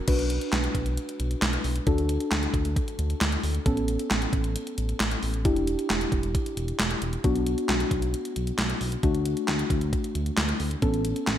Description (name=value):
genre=synth-pop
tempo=134 BPM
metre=4/4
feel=straight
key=B minor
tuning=A4 = 440 Hz
part: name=muted felt-like synth keys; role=accompaniment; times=0.0-11.4 s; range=A3 to B4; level=-29 LUFS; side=left 1 dB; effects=chorus
part: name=smooth gliding synth bass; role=bass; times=0.1-11.4 s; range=E1 to D2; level=-29 LUFS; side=equal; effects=none
part: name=clean 12-bit digital drum machine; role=drums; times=0.1-11.4 s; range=crash cymbal, handclaps, hi-hat, kick drum, snare drum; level=-27 LUFS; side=equal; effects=gated reverb
room=moderate lush hall reverb, RT60 2.3 s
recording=bright 1980s-style digital production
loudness=-24 LUFS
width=side -11 dB against mid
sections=0.1-11.4 A section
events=none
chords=0.1 Bm; 1.9 D; 3.7 Aadd9; 5.5 Em7; 7.2 Bm; 9.0 D; 10.8 Aadd9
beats=| 0.08 0.53 0.97 1.42 | 1.87 2.32 2.76 3.21 | 3.66 4.11 4.55 5.00 | 5.45 5.90 6.35 6.79 | 7.24 7.69 8.14 8.59 | 9.03 9.48 9.93 10.38 | 10.82 11.27